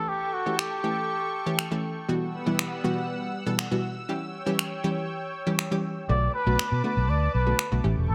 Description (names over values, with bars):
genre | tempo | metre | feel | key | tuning
dance-pop | 120 BPM | 4/4 | straight | B minor | A4 = 439 Hz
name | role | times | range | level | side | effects
trumpet with cup mute | melody | 0.0-1.8, 6.1-8.1 s | F#4 to D5 | -31 LUFS | equal | digital delay
analog pluck | accompaniment | 0.0-8.1 s | B2 to A4 | -31 LUFS | equal | chorus
lush unison pad | sustained chords | 0.0-8.1 s | G3 to E6 | -37 LUFS | equal | chorus
electronic finger snaps | drums | 0.6-7.7 s | none | -30 LUFS | equal | none
vintage muted fingered electric bass | bass | 6.1-8.1 s | E1 to B2 | -26 LUFS | equal | none
room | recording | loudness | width
light reverb | none | -27 LUFS | mono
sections
0.0-8.1 A section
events
none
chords
0.0 A7; 2.1 Emadd9/B; 4.1 C#dim; 6.1 Bm7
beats
| 0.09 0.59 1.09 1.59 | 2.09 2.59 3.09 3.59 | 4.09 4.59 5.09 5.59 | 6.09 6.59 7.09 7.59 | 8.09